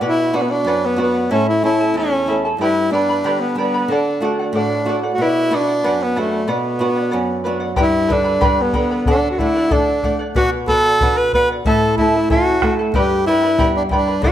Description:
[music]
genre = andean folk, Andean ensemble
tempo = 93 BPM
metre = 2/4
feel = straight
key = unclear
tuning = A4 = 435 Hz
[part]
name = warm tenor saxophone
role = melody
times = 0.0-14.3 s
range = A3 to B4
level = -17 LUFS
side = equal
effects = none
[part]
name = charango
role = accompaniment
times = 0.0-14.3 s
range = E4 to B5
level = -21 LUFS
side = equal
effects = none
[part]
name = flamenco guitar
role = accompaniment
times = 0.0-14.3 s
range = E2 to F#4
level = -22 LUFS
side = right 1 dB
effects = none
[part]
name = bombo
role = percussion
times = 7.8-14.3 s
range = none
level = -22 LUFS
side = left 1 dB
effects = none
[sound]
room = moderate recital hall reverb, RT60 1.4 s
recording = none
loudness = -14 LUFS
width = side -11 dB against mid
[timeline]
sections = 0.0-7.8 A section; 7.8-14.3 A section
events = none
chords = 0.0 Bm; 1.3 A; 2.6 G; 3.9 D; 5.2 Bm; 7.8 G; 9.1 D; 10.4 Bm; 11.6 A; 12.9 G

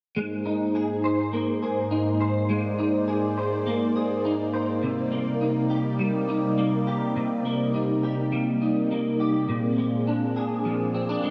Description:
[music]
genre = dream pop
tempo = 103 BPM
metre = 4/4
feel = straight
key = Ab lydian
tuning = A4 = 440 Hz
[part]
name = phased analog pad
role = sustained chords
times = 0.2-11.3 s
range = Ab2 to D5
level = -28 LUFS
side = equal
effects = phaser, chorus
[part]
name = clean electric guitar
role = arpeggios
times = 0.2-11.3 s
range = Bb2 to C5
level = -28 LUFS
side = equal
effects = ensemble chorus, digital delay
[sound]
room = wet lush hall reverb, RT60 1.9 s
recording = dark, warm production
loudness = -25 LUFS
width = mono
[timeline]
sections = 0.2-11.3 A section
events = none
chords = 0.2 Abadd9; 4.8 Cm7; 9.5 Bb7

